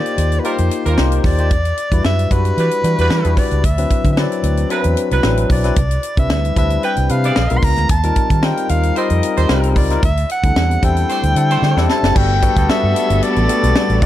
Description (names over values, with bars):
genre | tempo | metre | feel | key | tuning
polished 1980s jazz-funk pop | 113 BPM | 4/4 | swing 54% on 16ths | G major | A4 = 440 Hz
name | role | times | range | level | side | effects
warm soprano saxophone | melody | 0.0-14.1 s | B4 to C6 | -21 LUFS | equal | none
barky tine electric piano | accompaniment | 0.0-14.1 s | F#3 to C5 | -20 LUFS | left 4 dB | analog chorus
tight funk drum kit | drums | 0.1-14.1 s | crash cymbal, hi-hat, kick drum, snare drum | -18 LUFS | equal | none
vintage muted fingered electric bass | bass | 0.2-14.1 s | E1 to E3 | -17 LUFS | equal | none
clear horn section | second line | 0.4-11.9 s | F#3 to D5 | -25 LUFS | right 4 dB | ping-pong delay
warm studio string section | sustained chords | 12.2-14.1 s | D3 to A4 | -24 LUFS | right 1 dB | none
room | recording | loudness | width
little or no reverb | dark, warm production | -13 LUFS | side -13 dB against mid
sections
0.0-12.2 A section; 12.2-14.1 B section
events
drum fill 11.6-12.2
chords
0.0 Eb69; 1.5 Em9; 3.6 D13; 5.8 Cmaj9; 7.4 Bb7b9; 7.9 Eb69; 10.0 D9sus4; 12.2 Gmaj9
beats
0.45 0.98 | 1.51 2.04 2.57 3.11 | 3.64 4.17 4.70 5.24 | 5.77 6.30 6.83 7.37 | 7.90 8.43 8.96 9.50 | 10.03 10.56 11.09 11.63 | 12.16 12.69 13.22 13.76